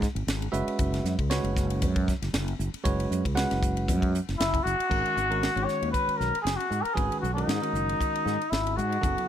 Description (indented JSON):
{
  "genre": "electric jazz fusion",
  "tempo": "116 BPM",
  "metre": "4/4",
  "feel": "swing 54% on 16ths",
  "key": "G# minor",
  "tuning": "A4 = 438 Hz",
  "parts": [
    { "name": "fretless electric bass", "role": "bass", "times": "0.0-9.1 s", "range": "F#1 to G#2", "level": "-29 LUFS", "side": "equal", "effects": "lush chorus" },
    { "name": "crisp fusion drum kit", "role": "drums", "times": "0.0-9.3 s", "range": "crash cymbal, hi-hat, kick drum, ride cymbal, snare drum", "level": "-31 LUFS", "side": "equal", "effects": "none" },
    { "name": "bell-like tine electric piano", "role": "accompaniment", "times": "0.5-9.3 s", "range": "C#3 to F#5", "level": "-32 LUFS", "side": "right 3 dB", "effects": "none" },
    { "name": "growling trumpet", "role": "melody", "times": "4.4-9.3 s", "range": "D#4 to C#5", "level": "-27 LUFS", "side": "left 2 dB", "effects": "slapback echo" }
  ],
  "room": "little or no reverb",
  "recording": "none",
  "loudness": "-25 LUFS",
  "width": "side -10 dB against mid",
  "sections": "0.0-4.9 A section; 4.9-9.3 B section",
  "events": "none",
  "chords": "0.0 N.C.; 0.5 F#sus2; 4.9 G#m9",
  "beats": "0.27 | 0.78 1.30 1.81 2.33 | 2.84 3.35 3.87 4.38 | 4.90 5.41 5.93 6.44 | 6.96 7.47 7.99 8.50 | 9.02"
}